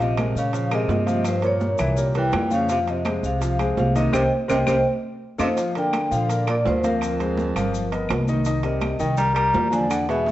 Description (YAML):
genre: Afro-Cuban jazz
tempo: 166 BPM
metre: 4/4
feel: straight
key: unclear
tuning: A4 = 441 Hz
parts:
  - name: vibraphone with medium hard mallets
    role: melody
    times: 0.0-10.3 s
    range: Bb4 to Bb5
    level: -25 LUFS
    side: equal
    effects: none
  - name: mellow baritone saxophone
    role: second line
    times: 0.0-10.3 s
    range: F2 to G3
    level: -29 LUFS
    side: right 3 dB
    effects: none
  - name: warm concert grand piano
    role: accompaniment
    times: 0.0-10.3 s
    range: D3 to F5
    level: -26 LUFS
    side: left 3 dB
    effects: none
  - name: upright bass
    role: bass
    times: 0.0-10.3 s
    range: G1 to Bb2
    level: -25 LUFS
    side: equal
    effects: none
  - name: congas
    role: percussion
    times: 0.0-10.3 s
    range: none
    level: -29 LUFS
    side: equal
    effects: none
  - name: maracas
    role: percussion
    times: 0.0-10.3 s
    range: none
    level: -43 LUFS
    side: left 7 dB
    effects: none
  - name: timbales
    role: percussion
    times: 0.0-10.3 s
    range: none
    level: -32 LUFS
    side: right 5 dB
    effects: none
  - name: claves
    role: percussion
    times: 0.2-10.1 s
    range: none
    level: -35 LUFS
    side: left 2 dB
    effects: none
room: moderate large studio reverb, RT60 1.3 s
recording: worn, warbling old tape, cassette tape, warbly pitch drift, nothing above 8.0 kHz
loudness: -19 LUFS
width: side -14 dB against mid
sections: 0.0-5.6 A section; 5.6-10.3 B section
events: band accent 4.1-5.6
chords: 0.0 Bbm9; 1.3 Gm7b5; 2.0 C7; 2.7 Fm7; 4.1 Cm7; 4.9 F7; 5.6 Bb6; 7.0 Dm7b5; 7.7 G7alt; 8.5 Cm7